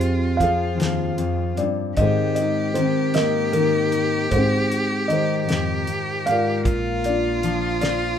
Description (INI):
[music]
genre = acoustic folk-pop ballad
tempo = 51 BPM (dotted quarters)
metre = 6/8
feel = straight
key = unclear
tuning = A4 = 440 Hz
[part]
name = felt-muted upright piano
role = melody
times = 0.0-8.2 s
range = Bb3 to F5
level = -23 LUFS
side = equal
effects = none
[part]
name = clear cello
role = second line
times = 0.0-8.2 s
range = F4 to G4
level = -27 LUFS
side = right 2 dB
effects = none
[part]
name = fingerpicked steel-string acoustic guitar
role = accompaniment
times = 0.0-8.2 s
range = Eb2 to Eb4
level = -24 LUFS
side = left 4 dB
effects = none
[part]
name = upright bass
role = bass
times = 0.0-8.2 s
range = Bb1 to Ab2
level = -29 LUFS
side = equal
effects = none
[part]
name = cloth-damped thuddy drum kit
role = drums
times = 0.0-8.0 s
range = hi-hat, kick drum, snare drum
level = -28 LUFS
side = equal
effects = none
[part]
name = felt-muted upright piano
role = arpeggios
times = 3.1-4.5 s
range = Eb5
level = -30 LUFS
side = right 9 dB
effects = none
[sound]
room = light reverb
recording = minimal, uncompressed stereo recording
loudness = -19 LUFS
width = side -8 dB against mid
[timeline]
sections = 0.0-8.2 A section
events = none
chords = 0.0 Fmadd9; 2.0 Ab; 6.7 Bb